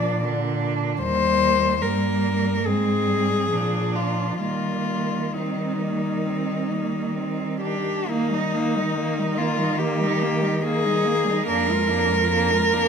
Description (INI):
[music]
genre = classical, lyrical piece for cello ensemble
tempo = 62-75 BPM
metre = 4/4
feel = rubato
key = Eb major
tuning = A4 = 440 Hz
[part]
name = warm cello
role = melody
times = 0.0-12.9 s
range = Eb4 to D5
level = -24 LUFS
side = left 4 dB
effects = none
[part]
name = warm cello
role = second line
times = 0.0-12.9 s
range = Bb3 to F4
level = -28 LUFS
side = right 8 dB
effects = none
[part]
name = warm cello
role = accompaniment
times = 0.0-12.9 s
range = D3 to Bb3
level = -27 LUFS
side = left 1 dB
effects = none
[part]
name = warm cello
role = bass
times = 0.0-12.9 s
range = Eb2 to Eb3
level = -27 LUFS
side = right 2 dB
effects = none
[sound]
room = moderate recital hall reverb, RT60 1.6 s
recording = none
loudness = -20 LUFS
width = side -6 dB against mid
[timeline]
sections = 0.0-8.1 A section; 8.1-12.9 B section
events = none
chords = 0.0 Bb; 1.0 Eb; 2.7 Ab; 3.5 Bb7; 4.4 Eb; 11.5 Bb7/F